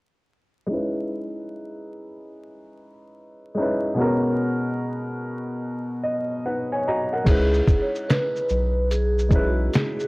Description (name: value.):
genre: lo-fi hip hop.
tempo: 73 BPM.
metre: 4/4.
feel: swing 63% on 16ths.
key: C# dorian.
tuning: A4 = 440 Hz.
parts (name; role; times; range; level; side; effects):
warm upright piano; accompaniment; 0.7-10.1 s; B2 to A#5; -25 LUFS; equal; cassette tape, low-pass filter.
vibraphone with soft mallets; melody; 7.3-10.1 s; F#4 to C#5; -24 LUFS; equal; low-pass filter.
round analog bass; bass; 7.3-9.7 s; B1 to C#2; -22 LUFS; equal; transformer saturation.
lo-fi sampler-style drum kit; drums; 7.3-10.1 s; crash cymbal, hi-hat, kick drum, shaker, snare drum; -21 LUFS; equal; none.
room: light reverb, digital ambience.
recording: worn, warbling old tape, cassette tape, vinyl crackle, warbly pitch drift.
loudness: -21 LUFS.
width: side -24 dB against mid.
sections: 0.7-7.3 A section; 7.3-10.1 B section.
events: filter sweep on upright piano 0.7-7.3; upright piano fill 5.6-7.3.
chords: 0.7 C#m9; 4.0 G#m11/B; 7.3 C#m9.